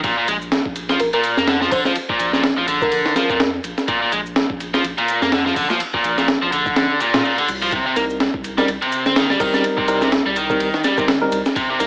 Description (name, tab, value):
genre	breakbeat, breaks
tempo	125 BPM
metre	4/4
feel	swing 57% on 16ths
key	unclear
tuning	A4 = 440 Hz
part	biting overdriven guitar	riff	0.0-11.9 s	Bb2 to C4	-19 LUFS	equal	none
part	saturated sub bass	bass	0.0-11.9 s	G1 to Bb2	-31 LUFS	equal	none
part	breakbeat sampler-style drum kit	drums	0.0-11.9 s	hi-hat, kick drum, ride cymbal, snare drum	-20 LUFS	equal	none
part	shaker	drums	0.0-11.9 s	none	-42 LUFS	equal	none
part	bell-like FM electric piano	melody	1.0-3.5 s	Bb4 to C5	-22 LUFS	equal	chorus, telephone sound
part	reverse cymbal	sound effects	7.0-7.7 s	none	-32 LUFS	left 1 dB	none
part	tine electric piano	stabs	8.0-11.9 s	G3 to Bb4	-21 LUFS	equal	overdrive, medium stereo tremolo, vintage 12-bit sampler grit, digital delay
room	light reverb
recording	vinyl crackle, AM radio sound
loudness	-16 LUFS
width	side -31 dB against mid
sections	0.0-11.9 A section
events	kick drops out 6.8-7.7; reverse cymbal 7.0-7.7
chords	0.0 Bb5; 7.7 Cm7